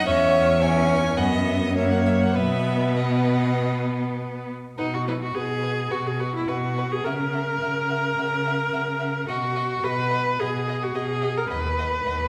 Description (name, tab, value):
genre	quick classical-period movement for string quartet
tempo	106 BPM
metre	4/4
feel	rubato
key	B major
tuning	A4 = 443 Hz
part	rich violin	melody	0.0-12.1 s	C#5 to G#5	-31 LUFS	equal	none
part	clear violin	second line	0.0-12.1 s	B4 to E5	-32 LUFS	equal	none
part	clear viola	accompaniment	0.0-12.3 s	A#3 to B4	-28 LUFS	equal	none
part	clear cello	bass	0.1-12.3 s	D#2 to C#3	-28 LUFS	equal	none
room	wet recital hall reverb, RT60 1.5 s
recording	heard from further back in the room, faint mains hum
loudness	-24 LUFS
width	mono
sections	0.0-4.8 A section; 4.8-12.3 B section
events	none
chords	0.1 C#m/E; 1.2 B/F#; 1.8 F#; 2.4 B; 4.8 B5; 7.0 F#7/C#; 9.3 B; 11.5 B/D#